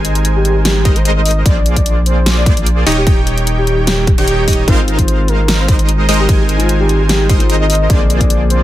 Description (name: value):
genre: future bass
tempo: 149 BPM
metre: 4/4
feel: half-time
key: Ab major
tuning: A4 = 441 Hz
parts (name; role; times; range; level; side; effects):
- supersaw stab; riff; 0.0-8.6 s; Eb3 to Ab5; -18 LUFS; right 1 dB; sidechain pumping
- saturated sub bass; bass; 0.0-8.6 s; Eb1 to Bb1; -14 LUFS; equal; sidechain pumping
- dubstep drum kit; drums; 0.0-8.6 s; hi-hat, snare drum; -18 LUFS; left 1 dB; none
- soft octave-layered synth lead; melody; 0.4-8.6 s; G4 to Eb5; -20 LUFS; equal; chorus, tremolo, sidechain pumping, dub echo
- electronic kick drum; drums; 0.9-8.3 s; none; -13 LUFS; equal; none
- felt-muted upright piano; accompaniment; 4.7-8.6 s; D3 to Ab4; -21 LUFS; left 3 dB; sidechain pumping
room: digital ambience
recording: none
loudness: -10 LUFS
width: side -14 dB against mid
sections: 0.0-8.6 A section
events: none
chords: 0.0 Ab; 1.5 Bb9; 2.9 Eb7; 4.7 Ab6; 7.9 Bb9